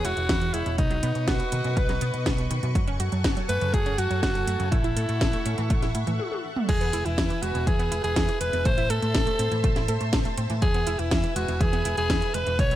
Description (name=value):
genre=italo disco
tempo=122 BPM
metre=4/4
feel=straight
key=E major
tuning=A4 = 444 Hz
part: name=raspy alto saxophone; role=melody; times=0.0-12.8 s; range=D#4 to C#5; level=-28 LUFS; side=equal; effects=tape echo
part: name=string machine, full ensemble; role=sustained chords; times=0.0-12.8 s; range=G#4 to E6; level=-34 LUFS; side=equal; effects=ensemble chorus
part: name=wide unison pluck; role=arpeggios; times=0.0-12.8 s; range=F#2 to A4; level=-34 LUFS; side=right 4 dB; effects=ping-pong delay
part: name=hollow-body short-scale fingered electric bass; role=bass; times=0.0-12.8 s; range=E1 to B2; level=-28 LUFS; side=equal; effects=none
part: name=house drum kit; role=drums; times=0.0-12.8 s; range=crash cymbal, hi-hat, snare drum, toms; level=-30 LUFS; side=equal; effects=none
part: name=electronic kick drum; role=drums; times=0.3-12.7 s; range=none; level=-26 LUFS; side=equal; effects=none
room=little or no reverb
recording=none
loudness=-22 LUFS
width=side -13 dB against mid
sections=0.0-6.7 A section; 6.7-12.8 B section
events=break 6.2-6.7; drum fill 6.2-6.7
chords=0.0 Eadd9; 0.8 Badd9; 2.8 F#madd9; 4.7 A6; 6.7 E; 8.7 Am; 10.6 E